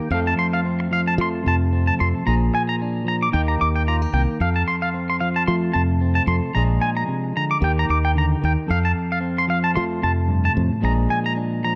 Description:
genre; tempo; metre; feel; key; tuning
highlife guitar band; 112 BPM; 4/4; swing 54% on 16ths; F mixolydian; A4 = 441 Hz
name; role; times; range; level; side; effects
clean electric guitar; accompaniment; 0.0-11.8 s; F2 to A4; -26 LUFS; equal; none
twangy electric guitar; arpeggios; 0.1-11.7 s; F5 to D6; -26 LUFS; equal; spring reverb, analog delay
fingered electric bass; bass; 0.1-11.1 s; Bb1 to F3; -23 LUFS; equal; none
room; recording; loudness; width
light reverb; none; -21 LUFS; mono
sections
0.0-11.8 A section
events
none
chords
0.1 F; 2.3 Bb7; 3.3 Eb; 4.4 F; 6.5 Bb7; 7.6 Eb; 8.7 F; 10.8 Bb7

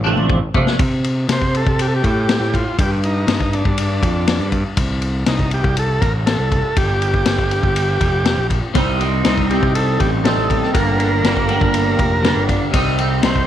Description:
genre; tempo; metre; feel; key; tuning
psychedelic rock; 121 BPM; 4/4; straight; C dorian; A4 = 439 Hz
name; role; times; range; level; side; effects
twangy electric guitar; riff; 0.0-0.8, 8.7-13.5 s; G2 to Eb4; -19 LUFS; right 2 dB; phaser, double-tracked left and right
fuzz picked electric bass; bass; 0.0-13.5 s; F1 to C3; -19 LUFS; equal; overdrive
vintage drum kit; drums; 0.2-13.5 s; kick drum, ride cymbal, snare drum, toms; -20 LUFS; left 2 dB; none
overdriven combo organ; melody; 1.3-13.5 s; D4 to C5; -21 LUFS; right 1 dB; slapback echo
room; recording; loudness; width
light reverb; 1960s-style stereo; -15 LUFS; side -11 dB against mid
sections
0.8-13.5 A section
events
drum fill 0.0-0.8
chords
0.0 Dm; 0.8 C5; 2.8 G5; 4.8 Am7b5; 6.8 N.C.; 8.8 Cm; 10.7 Gm; 12.7 Cm

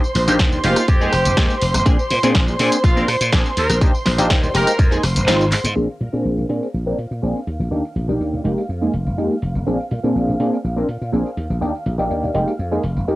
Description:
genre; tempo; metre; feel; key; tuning
filtered disco house; 123 BPM; 4/4; straight; Bb mixolydian; A4 = 439 Hz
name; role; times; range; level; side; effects
funky polysynth comp; accompaniment; 0.0-13.2 s; Ab3 to Bb4; -20 LUFS; equal; chorus, phaser, vintage 12-bit sampler grit, sidechain pumping, low-pass filter, cassette tape
dark studio violin section; sustained chords; 0.0-13.2 s; C5 to F6; -26 LUFS; right 1 dB; vintage 12-bit sampler grit, sidechain pumping, low-pass filter, cassette tape
punchy analog drum machine; drums; 0.0-13.2 s; handclaps, hi-hat, rim click, snare drum, tambourine; -22 LUFS; equal; sidechain pumping on hats, low-pass filter on hats, cassette tape, sidechain pumping on perc, low-pass filter on perc, low-pass filter on snare
congas and tambourine; percussion; 0.1-13.2 s; none; -31 LUFS; equal; none
slap bass; bass; 0.2-13.2 s; F1 to Bb2; -21 LUFS; equal; tube saturation, sidechain pumping, low-pass filter
electronic kick drum; drums; 0.4-4.9 s; none; -16 LUFS; equal; cassette tape
bright horn section; melody; 0.6-4.9 s; F4 to Bb4; -24 LUFS; equal; vintage 12-bit sampler grit, sidechain pumping, low-pass filter, tape echo
room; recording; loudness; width
light reverb; home recording on cassette; -16 LUFS; side -18 dB against mid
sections
0.0-5.8 A section; 5.8-13.2 B section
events
kick drops out 5.3-5.8; drum fill 5.5; filter sweep 5.8-13.2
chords
0.0 Ebmaj7; 0.6 Fm11; 1.9 Bb9; 3.6 Ebmaj7; 4.5 Fm11; 5.3 Ab6; 5.8 Bb9; 7.5 Ebmaj7; 8.4 Fm11; 9.7 Bb9; 11.4 Ebmaj7; 12.3 Fm11

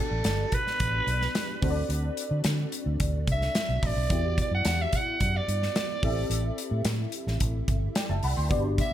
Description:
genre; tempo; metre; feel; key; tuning
polished 1980s jazz-funk pop; 109 BPM; 4/4; straight; unclear; A4 = 444 Hz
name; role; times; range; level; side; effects
raspy soprano saxophone; melody; 0.0-8.9 s; A4 to F#5; -30 LUFS; right 2 dB; digital delay
FM electric piano with soft pad layer; accompaniment; 0.0-8.9 s; B3 to C6; -34 LUFS; left 2 dB; ensemble chorus
vintage muted fingered electric bass; bass; 0.1-8.8 s; F#1 to D3; -28 LUFS; equal; none
modern studio drum kit; drums; 0.2-8.9 s; hi-hat, kick drum, snare drum; -29 LUFS; equal; gated reverb
room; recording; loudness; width
small room ambience; none; -25 LUFS; side -12 dB against mid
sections
0.0-8.9 A section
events
soprano saxophone solo 0.0-8.9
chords
0.0 Gmaj7; 1.6 D7; 4.1 Em9; 6.0 Am7

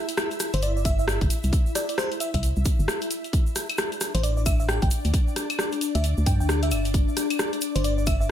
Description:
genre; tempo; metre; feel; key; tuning
UK garage, two-step garage; 133 BPM; 4/4; swing 61% on 16ths; unclear; A4 = 440 Hz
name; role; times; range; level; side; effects
ethereal airy pad; sustained chords; 0.0-8.3 s; D4 to E5; -31 LUFS; left 4 dB; ensemble chorus, built-in reverb, sidechain pumping
house drum kit; drums; 0.1-8.2 s; claves, hi-hat, rim click; -28 LUFS; equal; none
tube shaker; percussion; 0.1-8.3 s; none; -36 LUFS; right 3 dB; none
bell-like FM electric piano; melody; 0.5-8.3 s; C5 to G5; -32 LUFS; right 1 dB; chorus, ping-pong delay
organ-like FM bass; bass; 0.5-8.3 s; G1 to G2; -24 LUFS; equal; none
electronic kick drum; drums; 0.8-8.2 s; none; -23 LUFS; equal; none
room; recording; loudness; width
digital ambience; none; -22 LUFS; side -10 dB against mid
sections
0.0-8.3 A section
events
none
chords
0.0 C (rootless); 1.3 C; 3.3 Asus4; 4.9 N.C.; 6.7 G5

